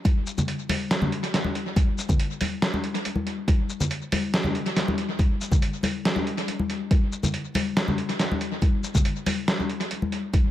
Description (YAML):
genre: dubstep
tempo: 140 BPM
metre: 4/4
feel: half-time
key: none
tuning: none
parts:
  - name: electronic kick drum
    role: drums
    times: 0.1-10.4 s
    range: none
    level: -22 LUFS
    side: equal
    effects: none
  - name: trip hop sampler-style drum kit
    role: drums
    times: 0.1-10.4 s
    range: hi-hat, shaker, snare drum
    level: -27 LUFS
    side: equal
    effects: tape echo
  - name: congas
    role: percussion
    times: 0.1-10.4 s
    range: none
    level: -27 LUFS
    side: left 2 dB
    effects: tape echo
room: moderate spring reverb, RT60 1.3 s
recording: echo-heavy mix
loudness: -23 LUFS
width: side -13 dB against mid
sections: 0.0-10.5 A section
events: none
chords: none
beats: | 0.05 0.48 0.91 1.33 | 1.76 2.19 2.62 3.05 | 3.48 3.91 4.33 4.76 | 5.19 5.62 6.05 6.48 | 6.91 7.33 7.76 8.19 | 8.62 9.05 9.48 9.91 | 10.34